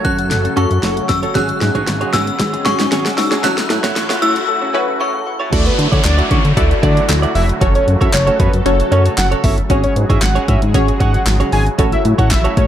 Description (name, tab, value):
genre	dance-pop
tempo	115 BPM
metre	4/4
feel	straight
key	F# minor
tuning	A4 = 441 Hz
part	synth chime	melody	0.0-5.2 s	C#6 to F#6	-20 LUFS	left 2 dB	ensemble chorus, ping-pong delay
part	punchy chord stab	accompaniment	0.0-12.6 s	C#4 to D5	-22 LUFS	left 1 dB	chorus, sidechain pumping
part	filtered supersaw swell	sustained chords	0.0-12.7 s	C#3 to A4	-25 LUFS	equal	sidechain pumping
part	soft round pluck	arpeggios	0.0-5.5 s	F#3 to A6	-27 LUFS	left 5 dB	chorus, sidechain pumping, ping-pong delay
part	direct-recorded clean electric guitar	riff	0.0-12.7 s	A3 to D5	-23 LUFS	right 6 dB	wide subtle chorus
part	chorused synth bass	bass	0.0-12.7 s	E#1 to D3	-16 LUFS	equal	sidechain pumping
part	deep house drum kit	drums	0.0-12.7 s	crash cymbal, handclaps, hi-hat, kick drum, snare drum	-17 LUFS	equal	none
part	riser and downlifter	sound effects	0.5-9.7 s	none	-26 LUFS	left 1 dB	none
part	fat analog lead	melody	5.7-12.7 s	B4 to G#5	-20 LUFS	equal	chorus, sidechain pumping, ping-pong delay
room	light reverb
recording	dark, warm production, high-pass filter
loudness	-12 LUFS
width	side -10 dB against mid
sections	0.0-5.5 A section; 5.5-12.7 B section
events	build-up 0.0-5.5; drum fill 0.0-4.5; riser 0.5-5.5; break 4.5-5.5; drop 5.5-12.7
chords	0.0 F#m; 1.4 C#sus4/G#; 3.4 A6; 5.5 Dadd9; 7.6 F#m; 9.7 C#sus4/G#; 11.8 A6